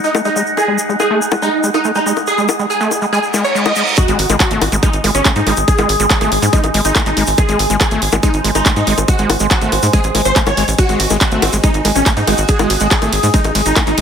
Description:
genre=psychedelic trance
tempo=141 BPM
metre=4/4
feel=straight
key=unclear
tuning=A4 = 440 Hz
part: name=supersaw stab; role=melody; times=0.0-14.0 s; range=C#4 to D#5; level=-18 LUFS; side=right 1 dB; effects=phaser, cassette tape, sidechain pumping, dub echo
part: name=overtone-sweeping drone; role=sustained chords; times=0.0-14.0 s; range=G#3 to F#5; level=-21 LUFS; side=equal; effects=chorus, built-in reverb, sidechain pumping
part: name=tube shaker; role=percussion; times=0.0-14.0 s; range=none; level=-24 LUFS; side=left 1 dB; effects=none
part: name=overdriven acid bass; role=riff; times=0.1-14.0 s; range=G#3 to A3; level=-20 LUFS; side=moving between left 6 dB and right 6 dB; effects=distortion, auto-pan, cassette tape, sidechain pumping, dub echo
part: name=drum and bass drum kit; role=drums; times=0.1-14.0 s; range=bongos, handclaps, hi-hat, ride cymbal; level=-18 LUFS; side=left 1 dB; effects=none
part: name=reverse cymbal and impact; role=sound effects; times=3.3-5.7 s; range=none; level=-21 LUFS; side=right 4 dB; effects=none
part: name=electronic kick drum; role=drums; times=4.0-13.8 s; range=none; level=-14 LUFS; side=equal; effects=none
part: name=tight sequencer bass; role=bass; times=4.1-14.0 s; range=G#1 to G#2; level=-18 LUFS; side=equal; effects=none
part: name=metallic wobble bass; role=second line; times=11.3-12.9 s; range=B#3 to F#4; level=-25 LUFS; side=right 6 dB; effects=distortion, analog chorus, sidechain pumping, high-pass filter, dub echo
room=light reverb, digital ambience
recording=none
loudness=-11 LUFS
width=side -7 dB against mid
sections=0.0-4.0 A section; 4.0-14.0 B section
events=reverse cymbal 3.3-4.0; drop 4.0-14.0; impact 4.0-5.7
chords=0.0 G#5; 4.0 G#7b9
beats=0.15 | 0.57 1.00 1.42 1.85 | 2.27 2.70 3.13 3.55 | 3.98 4.40 4.83 5.25 | 5.68 6.10 6.53 6.96 | 7.38 7.81 8.23 8.66 | 9.08 9.51 9.93 10.36 | 10.79 11.21 11.64 12.06 | 12.49 12.91 13.34 13.76

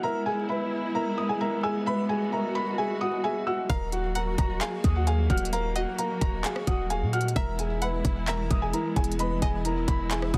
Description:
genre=hip hop, trap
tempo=131 BPM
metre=4/4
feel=half-time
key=unclear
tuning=A4 = 440 Hz
part: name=dark grand piano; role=melody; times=0.0-10.4 s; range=Gb4 to B5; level=-33 LUFS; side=equal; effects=none
part: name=felt-muted upright piano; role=accompaniment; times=0.0-10.4 s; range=E4 to F6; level=-36 LUFS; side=equal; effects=none
part: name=warm symphonic string section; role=sustained chords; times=0.0-10.4 s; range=E3 to Gb4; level=-35 LUFS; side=equal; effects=none
part: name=string-like resonator pluck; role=second line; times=3.7-10.1 s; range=Eb5 to Gb5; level=-41 LUFS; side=equal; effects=chorus, tape echo
part: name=warm 808-style bass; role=bass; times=3.7-10.4 s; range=Eb1 to Bb2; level=-31 LUFS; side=equal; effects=none
part: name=trap drum kit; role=drums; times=3.7-10.4 s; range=handclaps, hi-hat, kick drum, rim click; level=-30 LUFS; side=equal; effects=none
room=small room ambience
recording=dense, heavily limited modern master, vinyl crackle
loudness=-27 LUFS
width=mono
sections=0.0-10.4 A section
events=none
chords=0.0 Emaj7; 3.7 Ebmadd9; 7.4 Emaj7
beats=| 0.03 0.49 0.95 1.41 | 1.86 2.32 2.78 3.24 | 3.70 4.15 4.61 5.07 | 5.53 5.99 6.44 6.90 | 7.36 7.82 8.28 8.73 | 9.19 9.65 10.11

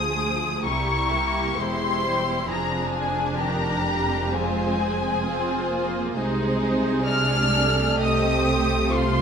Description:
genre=classical, slow romantic movement for string orchestra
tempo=66 BPM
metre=4/4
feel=rubato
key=unclear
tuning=A4 = 441 Hz
part: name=warm symphonic violin section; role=melody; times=0.0-9.2 s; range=Ab5 to F6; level=-25 LUFS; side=left 4 dB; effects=none
part: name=warm symphonic violin section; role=second line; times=0.0-9.2 s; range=F4 to Eb5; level=-29 LUFS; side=equal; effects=none
part: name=rich symphonic viola section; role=accompaniment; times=0.0-9.2 s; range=Eb3 to Ab4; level=-27 LUFS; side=right 2 dB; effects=none
part: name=rich symphonic cello section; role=bass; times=0.0-9.2 s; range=C2 to C3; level=-29 LUFS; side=right 2 dB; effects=none
part: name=warm symphonic double bass section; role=bass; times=0.0-9.2 s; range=E1 to D2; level=-30 LUFS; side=right 1 dB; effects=none
room=moderate scoring stage reverb, RT60 1.6 s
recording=minimal, uncompressed stereo recording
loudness=-21 LUFS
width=side -7 dB against mid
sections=0.0-9.2 A section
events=none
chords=0.0 Fm; 0.7 C7; 2.5 Fm7; 6.2 Ab/C; 8.0 F7/C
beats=0.66 1.58 | 2.49 3.41 4.34 5.26 | 6.17 7.08 8.00 8.92

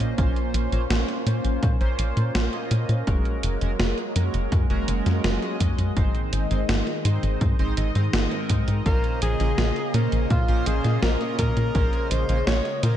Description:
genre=synthwave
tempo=83 BPM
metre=4/4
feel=straight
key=Bb minor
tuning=A4 = 441 Hz
part: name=phased analog pad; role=sustained chords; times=0.0-13.0 s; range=Db3 to Eb5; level=-30 LUFS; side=equal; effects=phaser, chorus, sidechain pumping
part: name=chorused polysynth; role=stabs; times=0.0-13.0 s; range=Ab2 to Eb5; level=-32 LUFS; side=right 2 dB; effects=ping-pong delay
part: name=tight sequencer bass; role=bass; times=0.0-13.0 s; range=Gb1 to Bb2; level=-23 LUFS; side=equal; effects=tube saturation, sidechain pumping
part: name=gated 80s digital drum machine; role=drums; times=0.0-13.0 s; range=hi-hat, snare drum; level=-29 LUFS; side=right 1 dB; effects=gated reverb, gated reverb snare
part: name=electronic kick drum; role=drums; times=0.2-11.9 s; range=none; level=-24 LUFS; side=equal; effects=none
part: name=breathy tenor saxophone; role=melody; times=8.9-13.0 s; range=F4 to Db5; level=-28 LUFS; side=left 1 dB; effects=digital delay
room=light reverb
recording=dark, warm production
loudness=-21 LUFS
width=side -11 dB against mid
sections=0.0-13.0 A section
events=none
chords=0.0 Bbmadd9; 3.1 Gbadd9; 6.0 Ab; 8.9 Bbmadd9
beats=| 0.18 0.91 1.63 2.35 | 3.07 3.80 4.52 5.24 | 5.96 6.69 7.41 8.13 | 8.86 9.58 10.30 11.03 | 11.75 12.47

